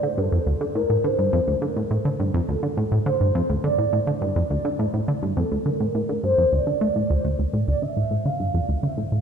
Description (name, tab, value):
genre	ambient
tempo	104 BPM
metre	4/4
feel	straight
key	D minor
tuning	A4 = 440 Hz
part	expressive synth lead	melody	0.0-9.2 s	A4 to F5	-25 LUFS	equal	lush chorus, tape echo
part	plucky analog bass	riff	0.0-9.2 s	D2 to A3	-22 LUFS	equal	tape echo
room	wet concert hall reverb, RT60 1.9 s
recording	dark, warm production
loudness	-20 LUFS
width	side -7 dB against mid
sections	0.0-9.2 A section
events	none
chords	0.0 Dm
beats	0.18 | 0.75 1.33 1.91 2.48 | 3.06 3.64 4.21 4.79 | 5.37 5.95 6.52 7.10 | 7.68 8.25 8.83